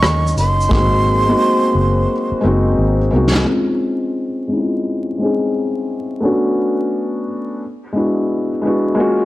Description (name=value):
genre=lo-fi hip hop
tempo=87 BPM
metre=4/4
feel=swing 64% on 16ths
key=Db major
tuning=A4 = 439 Hz
part: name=breathy jazz flute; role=melody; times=0.0-2.7 s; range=C6 to Db6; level=-19 LUFS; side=right 2 dB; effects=none
part: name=felt-muted upright piano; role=accompaniment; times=0.0-9.2 s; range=Gb3 to Ab4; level=-17 LUFS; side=left 1 dB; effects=low-pass filter
part: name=mellow French horn section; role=sustained chords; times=0.0-3.4 s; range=Gb3 to Eb5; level=-25 LUFS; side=equal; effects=none
part: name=vintage muted fingered electric bass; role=bass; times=0.0-3.4 s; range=Gb1 to Eb2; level=-17 LUFS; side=equal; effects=tube saturation
part: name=vintage brush drum kit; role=drums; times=0.0-3.5 s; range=hi-hat, kick drum, rim click, shaker, snare drum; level=-19 LUFS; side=equal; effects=none
room=light reverb, small room ambience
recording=transformer saturation, vinyl crackle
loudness=-14 LUFS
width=side -16 dB against mid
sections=0.0-3.5 A section; 3.5-9.2 B section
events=drum fill 0.7-3.5; filter sweep on felt piano 3.5-9.2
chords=0.0 Ebm9; 0.7 Ab9; 3.5 Dbmaj9; 6.2 Cbm7; 7.6 E9